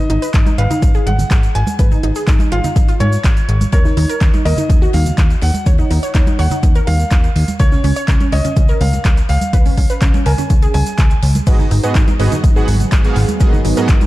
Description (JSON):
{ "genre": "progressive house", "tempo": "124 BPM", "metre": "4/4", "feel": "straight", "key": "G# dorian", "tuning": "A4 = 444 Hz", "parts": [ { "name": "clear grand piano", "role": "melody", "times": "0.0-11.4 s", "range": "C#5 to G#5", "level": "-24 LUFS", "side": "equal", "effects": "tape echo" }, { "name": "wide unison pluck", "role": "arpeggios", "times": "0.0-14.1 s", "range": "C#4 to C#5", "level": "-23 LUFS", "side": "equal", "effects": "sidechain pumping, tape echo" }, { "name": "plucky analog bass", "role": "bass", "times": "0.0-14.0 s", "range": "G#1 to G#2", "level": "-16 LUFS", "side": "equal", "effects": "sidechain pumping" }, { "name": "compact cocktail drum kit", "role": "drums", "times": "0.1-14.1 s", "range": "ride cymbal, snare drum", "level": "-37 LUFS", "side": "left 3 dB", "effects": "none" }, { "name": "deep house drum kit", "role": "drums", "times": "0.1-14.1 s", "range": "crash cymbal, handclaps, hi-hat", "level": "-26 LUFS", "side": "equal", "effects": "none" }, { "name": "egg shaker", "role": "percussion", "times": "0.2-14.1 s", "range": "none", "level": "-36 LUFS", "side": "right 3 dB", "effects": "none" }, { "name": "electronic kick drum", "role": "drums", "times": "0.3-14.0 s", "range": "none", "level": "-13 LUFS", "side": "equal", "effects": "none" }, { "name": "congas", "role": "percussion", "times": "0.5-14.1 s", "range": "none", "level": "-25 LUFS", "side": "right 3 dB", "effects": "sidechain pumping on perc" }, { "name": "evolving wavetable pad", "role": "sustained chords", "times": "12.3-14.1 s", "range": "D#3 to G#4", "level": "-23 LUFS", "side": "right 3 dB", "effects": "phaser, built-in reverb, sidechain pumping" }, { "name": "soft supersaw", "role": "stabs", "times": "11.5-13.9 s", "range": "G#2 to F#5", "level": "-20 LUFS", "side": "right 2 dB", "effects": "cassette tape, sidechain pumping, tape echo" } ], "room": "small room reverb", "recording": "dark, warm production", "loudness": "-11 LUFS", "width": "side -17 dB against mid", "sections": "0.0-14.1 A section", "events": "none", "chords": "0.0 G#5; 3.7 D#m; 7.6 C#; 11.5 G#m7" }